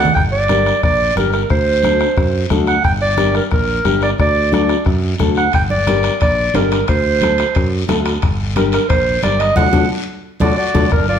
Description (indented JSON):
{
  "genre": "latin, cumbia",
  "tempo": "178 BPM",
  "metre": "4/4",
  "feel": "straight",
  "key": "G harmonic minor",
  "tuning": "A4 = 440 Hz",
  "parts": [
    { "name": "clear clarinet", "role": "melody", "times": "0.0-11.2 s", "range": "Bb4 to G5", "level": "-16 LUFS", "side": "right 3 dB", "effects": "none" },
    { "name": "nylon-string guitar", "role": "accompaniment", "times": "0.0-10.9 s", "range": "D4 to Bb4", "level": "-21 LUFS", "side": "left 7 dB", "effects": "none" },
    { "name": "modern bright fingered electric bass", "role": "bass", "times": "0.0-11.2 s", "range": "G1 to F#2", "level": "-19 LUFS", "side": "equal", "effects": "none" },
    { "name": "congas", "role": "percussion", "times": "0.1-11.2 s", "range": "none", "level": "-23 LUFS", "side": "right 1 dB", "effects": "none" },
    { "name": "guiro", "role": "percussion", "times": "0.1-11.2 s", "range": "none", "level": "-30 LUFS", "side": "left 6 dB", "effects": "none" },
    { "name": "bombo", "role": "percussion", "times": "0.2-11.1 s", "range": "none", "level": "-20 LUFS", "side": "left 2 dB", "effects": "none" },
    { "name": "timbales", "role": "percussion", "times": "5.5-10.8 s", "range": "none", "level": "-28 LUFS", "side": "right 3 dB", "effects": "none" },
    { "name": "clear trumpet", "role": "second line", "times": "10.4-11.2 s", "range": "D4 to F#4", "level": "-25 LUFS", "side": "left 4 dB", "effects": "none" }
  ],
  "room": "wet large studio reverb, RT60 1.0 s",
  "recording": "heard from further back in the room",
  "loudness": "-13 LUFS",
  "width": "side -8 dB against mid",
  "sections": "0.2-10.9 A section",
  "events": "drum fill 0.0, 9.6-10.9; band accent 9.6-10.9",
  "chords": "0.2 Gm; 1.5 D7; 2.8 Gm; 4.2 D; 5.5 Gm; 6.9 D7; 8.2 Gm; 9.6 D",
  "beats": "| 0.15 0.49 0.82 1.16 | 1.50 1.83 2.17 2.51 | 2.84 3.18 3.52 3.85 | 4.19 4.53 4.86 5.20 | 5.53 5.87 6.21 6.54 | 6.88 7.22 7.55 7.89 | 8.22 8.56 8.90 9.23 | 9.57 9.91 10.24 10.58 | 10.91"
}